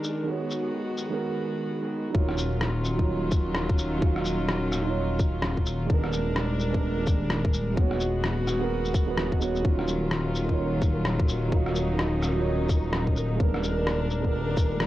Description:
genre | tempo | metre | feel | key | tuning
future garage | 128 BPM | 4/4 | swing 61% on 16ths | Eb minor | A4 = 440 Hz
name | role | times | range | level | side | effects
felt-muted upright piano | accompaniment | 0.0-14.9 s | Eb3 to F5 | -32 LUFS | right 6 dB | sidechain pumping, cassette tape, tape echo, plate reverb
rich chamber string section | sustained chords | 0.0-14.9 s | Eb3 to Bb4 | -31 LUFS | left 1 dB | vintage 12-bit sampler grit, sidechain pumping, cassette tape
electronic shaker and rim click | drums | 0.0-14.9 s | none | -32 LUFS | left 1 dB | vintage 12-bit sampler grit, cassette tape
flickering grainy texture | texture | 0.0-1.2, 10.0-14.9 s | Ab4 to Bb4 | -38 LUFS | left 2 dB | built-in reverb, cassette tape
dark detuned saw bass | bass | 2.1-14.9 s | Eb1 | -29 LUFS | left 1 dB | sidechain pumping
electronic kick drum | drums | 2.1-14.7 s | none | -24 LUFS | left 1 dB | vintage 12-bit sampler grit, cassette tape
room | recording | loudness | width
light reverb | home recording on cassette, nothing above 10.5 kHz | -24 LUFS | side -15 dB against mid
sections
0.0-2.1 A section; 2.1-14.9 B section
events
filter sweep on felt piano 0.0-2.1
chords
0.3 Abm9/Eb; 2.1 Ebm9; 5.9 Bb7b9/Eb; 7.8 Abm9/Eb; 9.6 Ebm9; 13.4 Bb7b9/Eb

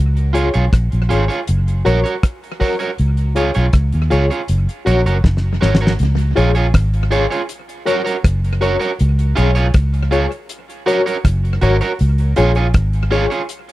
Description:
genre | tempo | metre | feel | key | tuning
roots reggae | 80 BPM | 4/4 | straight | unclear | A4 = 440 Hz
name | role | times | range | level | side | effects
vintage muted fingered electric bass | bass | 0.0-13.3 s | F#1 to D#2 | -15 LUFS | equal | none
damped 70s drum kit | drums | 0.2-13.7 s | hi-hat, kick drum, rim click, snare drum | -17 LUFS | equal | tape echo
electric guitar at the edge of break-up | accompaniment | 0.3-13.4 s | E#4 to C#5 | -21 LUFS | right 4 dB | dub echo
reed electric piano | stabs | 0.3-13.3 s | E#4 to C#5 | -19 LUFS | left 4 dB | fast tremolo
room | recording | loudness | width
studio ambience | dry, close 1970s-style studio recording, faint mains hum | -14 LUFS | side -16 dB against mid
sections
0.0-6.0 A section; 6.0-13.7 B section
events
drum fill 5.2-6.0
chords
0.0 C#; 1.5 F#; 3.0 C#; 4.5 F#; 6.0 C#; 7.5 F#; 9.0 C#; 10.5 F#; 12.0 C#

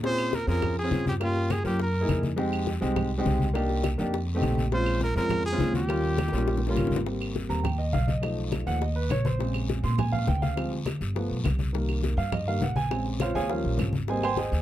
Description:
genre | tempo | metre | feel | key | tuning
Afro-Cuban jazz | 205 BPM | 4/4 | straight | Ab major | A4 = 435 Hz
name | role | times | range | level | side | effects
warm grand piano | accompaniment | 0.0-14.6 s | Db3 to C6 | -29 LUFS | right 1 dB | none
upright bass | bass | 0.0-14.6 s | G1 to Bb2 | -28 LUFS | equal | none
bongos | percussion | 0.0-14.6 s | none | -35 LUFS | left 8 dB | none
congas | percussion | 0.0-14.6 s | none | -32 LUFS | left 1 dB | none
guiro | percussion | 0.0-14.6 s | none | -44 LUFS | left 5 dB | none
clear trumpet | melody | 0.1-2.2, 4.7-6.7 s | F4 to C5 | -30 LUFS | right 1 dB | none
claves | percussion | 0.2-14.4 s | none | -41 LUFS | right 6 dB | none
room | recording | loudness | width
light reverb | dark, warm production | -24 LUFS | side -13 dB against mid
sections
0.0-7.1 A section; 7.1-14.6 B section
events
drum fill 6.2-7.1; grand piano solo 7.1-14.6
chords
0.0 Bbm7; 1.2 Gm7b5; 1.8 Gb13; 2.4 Fm7; 3.6 Cm7; 4.1 F7; 4.7 Bbm7; 5.9 Eb7; 7.1 Abmaj9; 8.2 B7#11; 9.4 Bbm9; 10.6 Dm7b5; 11.2 G7; 11.7 Cm7; 12.9 Bbm9; 13.5 Eb9; 14.1 Abmaj9

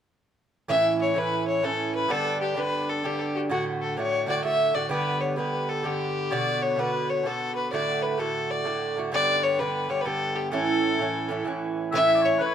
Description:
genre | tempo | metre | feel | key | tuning
celtic folk | 128 BPM | 3/4 | swing 65% on 8ths | A mixolydian | A4 = 440 Hz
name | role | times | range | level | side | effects
rich fiddle | melody | 0.7-12.5 s | F#4 to E5 | -25 LUFS | left 2 dB | plate reverb
Irish bouzouki | accompaniment | 0.7-12.5 s | G2 to G4 | -27 LUFS | right 3 dB | none
mellow small bagpipes | second line | 11.9-12.5 s | B4 to E5 | -27 LUFS | left 3 dB | none
room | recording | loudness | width
moderate studio reverb, RT60 0.6 s | dark, warm production | -23 LUFS | side -9 dB against mid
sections
0.7-11.9 A section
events
none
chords
0.7 A; 2.1 G; 3.5 D/A; 4.9 G; 6.3 Bm; 7.7 D; 9.1 G; 10.5 A

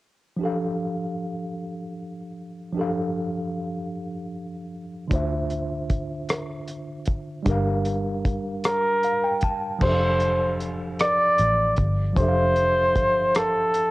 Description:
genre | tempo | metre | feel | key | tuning
slow six-eight R&B | 51 BPM (dotted quarters) | 6/8 | straight | F major | A4 = 442 Hz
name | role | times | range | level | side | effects
tine electric piano | accompaniment | 0.4-13.9 s | D3 to A5 | -28 LUFS | equal | overdrive, fast stereo tremolo, cassette tape
vintage muted fingered electric bass | bass | 5.1-13.9 s | F1 to D2 | -27 LUFS | equal | none
cloth-damped thuddy drum kit | drums | 5.1-13.9 s | crash cymbal, hi-hat, kick drum, rim click | -26 LUFS | equal | none
warm flugelhorn | melody | 8.7-13.9 s | A4 to D5 | -21 LUFS | equal | none
room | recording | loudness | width
light reverb, studio reverb | home recording on cassette | -21 LUFS | side -19 dB against mid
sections
0.4-9.8 A section; 9.8-13.9 B section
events
tine electric piano fill 8.6-9.8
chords
0.4 F69; 5.1 Dm7; 7.5 Gm7; 9.8 F69

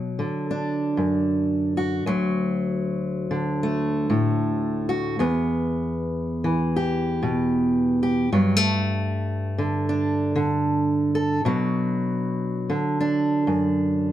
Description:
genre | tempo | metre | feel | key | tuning
folk, solo fingerstyle acoustic guitar | 77 BPM | 4/4 | swing 60% on 8ths | unclear | A4 = 440 Hz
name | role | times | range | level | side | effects
fingerpicked steel-string acoustic guitar | solo | 0.0-14.1 s | D2 to A4 | -21 LUFS | equal | none
room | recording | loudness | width
moderate large studio reverb, RT60 1.2 s | dark, warm production | -21 LUFS | side -12 dB against mid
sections
0.0-14.1 A section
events
none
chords
0.0 Bm (rootless); 2.1 D; 5.2 Em; 8.3 Gsus2; 11.4 Bm

